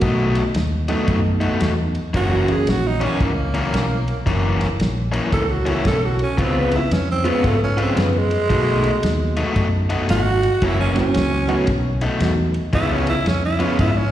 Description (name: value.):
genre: electric blues shuffle.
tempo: 113 BPM.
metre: 4/4.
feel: swing 64% on 8ths.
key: F# mixolydian.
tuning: A4 = 442 Hz.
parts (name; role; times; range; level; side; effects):
reed electric piano; accompaniment; 0.0-13.8 s; D#3 to F#4; -25 LUFS; right 4 dB; plate reverb, slapback echo.
overdriven electric guitar; riff; 0.0-13.9 s; F#2 to E#4; -23 LUFS; left 3 dB; slapback echo.
vintage muted fingered electric bass; bass; 0.0-14.1 s; F#1 to G#2; -21 LUFS; equal; none.
warm soul drum kit; drums; 0.0-13.9 s; kick drum, ride cymbal, snare drum; -26 LUFS; equal; none.
growling tenor saxophone; second line; 2.2-14.1 s; G#3 to A4; -22 LUFS; right 3 dB; slapback echo, plate reverb.
room: light reverb.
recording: live gig heard through the venue's PA, recital hall reverb.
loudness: -17 LUFS.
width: side -12 dB against mid.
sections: 0.0-14.1 A section.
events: tenor saxophone solo 0.0-14.1.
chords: 0.0 B7; 2.1 F#7; 6.4 C#7; 8.5 B7; 10.6 F#7; 11.7 B7; 12.7 C#7.